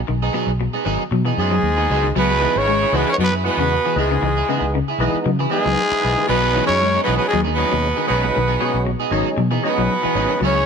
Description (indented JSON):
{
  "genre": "afrobeat",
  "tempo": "116 BPM",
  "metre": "4/4",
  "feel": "straight",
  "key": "C# minor",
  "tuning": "A4 = 438 Hz",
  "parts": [
    { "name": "electric guitar at the edge of break-up", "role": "arpeggios", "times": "0.0-10.6 s", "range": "B2 to G#3", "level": "-24 LUFS", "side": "left 5 dB", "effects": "none" },
    { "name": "fingered electric bass", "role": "bass", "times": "0.1-10.7 s", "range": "G#1 to C#3", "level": "-22 LUFS", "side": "equal", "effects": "none" },
    { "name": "electric guitar at the edge of break-up", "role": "stabs", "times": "0.2-10.7 s", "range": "F#3 to G#4", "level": "-24 LUFS", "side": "right 5 dB", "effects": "wide subtle chorus" },
    { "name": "growling trumpet", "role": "melody", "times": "1.4-10.7 s", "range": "G#4 to C#5", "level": "-20 LUFS", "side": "right 1 dB", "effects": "none" },
    { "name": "edgy tenor saxophone", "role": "second line", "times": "1.4-10.7 s", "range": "G#3 to C#4", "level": "-27 LUFS", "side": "right 6 dB", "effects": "none" },
    { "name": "raspy baritone saxophone", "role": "second line", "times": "1.4-10.7 s", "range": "G#2 to C#3", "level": "-28 LUFS", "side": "left 6 dB", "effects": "none" },
    { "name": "percussive tonewheel organ", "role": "accompaniment", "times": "2.4-10.4 s", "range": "E3 to F#4", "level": "-26 LUFS", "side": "left 1 dB", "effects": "slow rotary speaker, overdrive" }
  ],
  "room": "light reverb",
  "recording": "none",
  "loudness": "-16 LUFS",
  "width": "side -6 dB against mid",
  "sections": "0.0-10.7 A section",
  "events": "none",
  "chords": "0.0 C#m7"
}